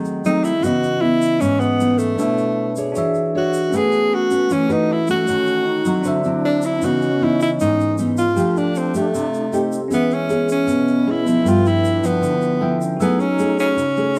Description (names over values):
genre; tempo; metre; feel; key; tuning
bossa nova; 155 BPM; 4/4; straight; E major; A4 = 441 Hz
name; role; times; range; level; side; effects
bell-like tine electric piano; accompaniment; 0.0-14.2 s; A3 to E6; -28 LUFS; equal; none
nylon-string guitar; accompaniment; 0.0-14.2 s; G2 to C#5; -22 LUFS; equal; none
tube shaker; percussion; 0.1-14.2 s; none; -42 LUFS; equal; none
clear tenor saxophone; melody; 0.3-14.2 s; A3 to G#4; -21 LUFS; equal; none
breathy mellow wooden-headed alto flute; second line; 3.7-14.2 s; G#3 to D#4; -30 LUFS; equal; none
room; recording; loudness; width
moderate studio reverb, RT60 0.8 s; band playing live in one room; -18 LUFS; mono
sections
0.0-9.9 A section; 9.9-14.2 B section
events
none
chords
0.0 G#7b9; 0.6 C#m9; 2.2 Bm11; 3.0 E13; 3.7 A69; 5.3 D#m7b5; 6.0 D9; 6.8 C#m9; 8.4 F9; 9.9 E6; 11.5 G13; 13.0 F#m9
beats
0.24 | 0.63 1.02 1.40 1.79 | 2.18 2.56 2.95 3.34 | 3.73 4.11 4.50 4.88 | 5.27 5.66 6.04 6.43 | 6.82 7.20 7.59 7.98 | 8.36 8.75 9.13 9.52 | 9.91 10.29 10.68 11.07 | 11.45 11.84 12.23 12.61 | 13.00 13.39 13.77 14.16